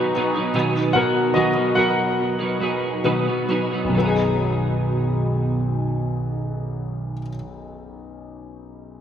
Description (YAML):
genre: pop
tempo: 65-77 BPM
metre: 4/4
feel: straight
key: B major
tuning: A4 = 440 Hz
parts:
  - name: warm concert grand piano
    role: accompaniment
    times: 0.0-9.0 s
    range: B1 to F#5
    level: -23 LUFS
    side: left 2 dB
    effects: analog chorus
  - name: twelve-string electric guitar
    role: arpeggios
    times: 0.0-7.6 s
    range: B2 to G#4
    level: -22 LUFS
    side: right 2 dB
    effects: ensemble chorus, digital delay
room: wet lush hall reverb, RT60 2.4 s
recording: bright 1980s-style digital production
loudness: -19 LUFS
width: side -9 dB against mid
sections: 0.0-4.0 A section; 4.0-7.6 B section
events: slowing down 0.0-4.0; grand piano solo 0.0-4.0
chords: 0.0 B6